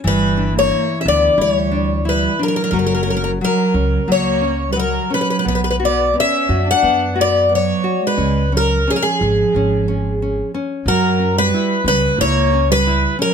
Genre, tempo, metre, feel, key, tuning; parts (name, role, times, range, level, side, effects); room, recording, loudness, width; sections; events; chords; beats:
fado-style ballad; 89 BPM; 4/4; rubato; A4 = 440 Hz
nylon-string guitar; accompaniment; 0.0-13.3 s; E3 to F#4; -23 LUFS; left 4 dB
upright bass; bass; 0.0-13.0 s; F#1 to F#2; -20 LUFS; equal
picked twelve-string acoustic guitar; melody; 0.1-13.3 s; G#4 to F#5; -17 LUFS; left 2 dB
dark cello; second line; 0.1-13.3 s; E#3 to D4; -22 LUFS; right 9 dB
light reverb; close, detailed microphones; -14 LUFS; side -7 dB against mid
0.0-13.3 A section
0.1 G5; 2.7 F#; 5.5 B5; 8.2 C#; 10.9 F#5
| 0.06 0.72 1.39 2.06 | 2.73 3.41 4.08 4.77 | 5.47 6.16 6.83 7.51 | 8.18 8.87 9.54 10.21 | 10.86 11.52 12.19 12.86